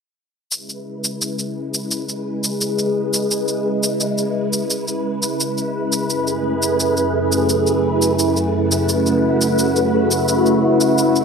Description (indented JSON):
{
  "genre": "sunset chillout",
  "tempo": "86 BPM",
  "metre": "4/4",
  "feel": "straight",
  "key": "unclear",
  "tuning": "A4 = 435 Hz",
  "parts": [
    { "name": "soft string machine", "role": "sustained chords", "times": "0.5-11.2 s", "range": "F#2 to B4", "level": "-17 LUFS", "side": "equal", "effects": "phaser, ensemble chorus" },
    { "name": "shaker", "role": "drums", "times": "0.5-11.2 s", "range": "none", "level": "-23 LUFS", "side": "equal", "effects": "overdrive" }
  ],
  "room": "moderate plate reverb, RT60 1.7 s, digital ambience",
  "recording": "none",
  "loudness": "-16 LUFS",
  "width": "side -5 dB against mid",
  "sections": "0.5-11.2 A section",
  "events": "none",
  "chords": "0.5 C#m7; 6.1 F#m11"
}